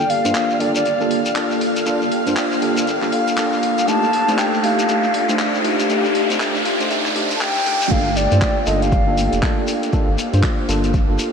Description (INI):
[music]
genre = deep house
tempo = 119 BPM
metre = 4/4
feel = swing 60% on 16ths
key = G minor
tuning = A4 = 440 Hz
[part]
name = mellow hollow silver concert flute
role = melody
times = 0.0-9.7 s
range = D5 to A5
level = -22 LUFS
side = equal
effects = analog delay
[part]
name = hollow soft pad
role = sustained chords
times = 0.0-11.3 s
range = Bb3 to G5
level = -26 LUFS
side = equal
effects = ensemble chorus, sidechain pumping
[part]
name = round analog bass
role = bass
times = 0.0-11.2 s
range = Eb1 to G2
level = -22 LUFS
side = equal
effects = sidechain pumping, high-pass filter
[part]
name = shekere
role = percussion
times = 0.0-11.3 s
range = none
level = -30 LUFS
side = left 4 dB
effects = none
[part]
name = riser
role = sound effects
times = 2.9-7.9 s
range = none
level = -27 LUFS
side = equal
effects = none
[part]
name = string machine, violins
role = texture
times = 0.0-7.9 s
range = F5 to F6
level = -30 LUFS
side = equal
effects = ensemble chorus
[part]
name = deep house drum kit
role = drums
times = 0.1-11.3 s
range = crash cymbal, handclaps, hi-hat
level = -26 LUFS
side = equal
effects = overdrive, vintage 12-bit sampler grit
[part]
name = tine electric piano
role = stabs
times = 0.2-11.3 s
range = A3 to C5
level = -21 LUFS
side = equal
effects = vintage 12-bit sampler grit, sidechain pumping, low-pass filter, diffuse ambient delay
[part]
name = electronic kick drum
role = drums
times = 7.9-11.1 s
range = none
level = -19 LUFS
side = equal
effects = overdrive, vintage 12-bit sampler grit
[sound]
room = wet huge ambient reverb, RT60 8.1 s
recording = dreamy mix soaked in reverb, cassette tape, high-pass filter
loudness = -16 LUFS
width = side -6 dB against mid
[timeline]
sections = 0.0-7.9 A section; 7.9-11.3 B section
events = build-up 0.0-7.9; filter sweep on tine electric piano 0.0-7.9; filter sweep on analog synth pad 0.0-7.9; filter sweep 0.0-7.9; riser 2.9-7.9; drop 7.9-11.3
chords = 0.0 Gm9; 3.9 F13; 7.9 Gm9